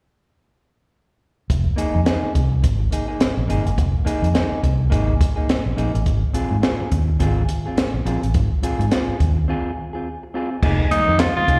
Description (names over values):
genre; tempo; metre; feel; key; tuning
funk; 105 BPM; 4/4; swing 60% on 16ths; F minor; A4 = 440 Hz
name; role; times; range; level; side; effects
vintage muted fingered electric bass; bass; 1.5-11.6 s; F1 to Ab2; -22 LUFS; equal; none
compact cocktail drum kit; drums; 1.5-11.6 s; crash cymbal, handclaps, hi-hat, kick drum, snare drum; -23 LUFS; equal; none
clean electric guitar; accompaniment; 1.8-11.6 s; Bb3 to Bb4; -28 LUFS; equal; slapback echo
raspy tenor saxophone; melody; 10.9-11.6 s; Eb4 to F4; -19 LUFS; equal; none
mellow tine electric piano; stabs; 10.9-11.6 s; Eb3 to Bb3; -30 LUFS; equal; none
room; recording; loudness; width
little or no reverb; live gig heard through the venue's PA, recital hall reverb; -20 LUFS; mono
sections
1.5-10.6 A section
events
break 9.5-10.6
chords
1.5 Fm11 (rootless); 6.1 Ab6; 10.6 Fm11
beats
| 1.50 2.07 2.64 3.21 | 3.78 4.35 4.92 5.49 | 6.06 6.63 7.20 7.77 | 8.35 8.92 9.49 10.06 | 10.63 11.20